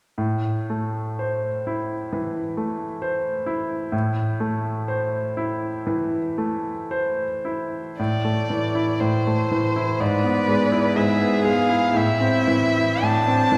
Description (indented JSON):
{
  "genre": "classical, slow romantic movement for piano trio",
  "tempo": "53-68 BPM",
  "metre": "4/4",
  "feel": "rubato",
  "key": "A minor",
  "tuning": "A4 = 440 Hz",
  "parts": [
    { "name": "bright grand piano", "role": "accompaniment", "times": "0.2-13.6 s", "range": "G#2 to C5", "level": "-24 LUFS", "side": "equal", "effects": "none" },
    { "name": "warm violin", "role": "melody", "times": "8.0-13.6 s", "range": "C5 to A5", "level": "-26 LUFS", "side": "equal", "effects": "none" },
    { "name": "rich cello", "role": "second line", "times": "10.0-13.6 s", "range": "D4 to B4", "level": "-29 LUFS", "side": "equal", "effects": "none" }
  ],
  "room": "wet concert hall reverb, RT60 2.0 s",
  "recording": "recorded in a church or concert hall",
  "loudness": "-23 LUFS",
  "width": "mono",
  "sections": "0.2-8.0 A section; 8.0-13.6 B section",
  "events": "none",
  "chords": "0.2 Am; 10.0 E7/G#; 11.9 Am"
}